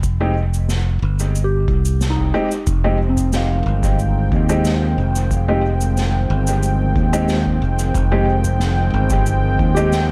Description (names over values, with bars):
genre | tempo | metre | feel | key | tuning
ambient dub | 91 BPM | 4/4 | straight | F minor | A4 = 440 Hz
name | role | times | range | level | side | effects
soft synth bell | arpeggios | 0.0-10.1 s | C4 to F5 | -29 LUFS | equal | chorus, phaser, dub echo
modern bright fingered electric bass | bass | 0.0-10.1 s | F1 to Eb2 | -20 LUFS | equal | none
cabasa and snare drum | drums | 0.0-10.1 s | none | -32 LUFS | equal | dub echo
electronic kick drum | drums | 0.0-9.7 s | none | -25 LUFS | equal | none
dark upright piano | stabs | 0.2-10.0 s | Ab3 to G4 | -26 LUFS | equal | dub echo
warm analog pad | sustained chords | 2.7-10.1 s | Eb3 to G5 | -25 LUFS | equal | chorus
room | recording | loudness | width
light reverb, small room ambience | echo-heavy mix | -18 LUFS | mono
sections
0.0-2.7 A section; 2.7-10.1 B section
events
band accent 2.0-2.3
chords
0.0 F7sus2; 2.7 Fm9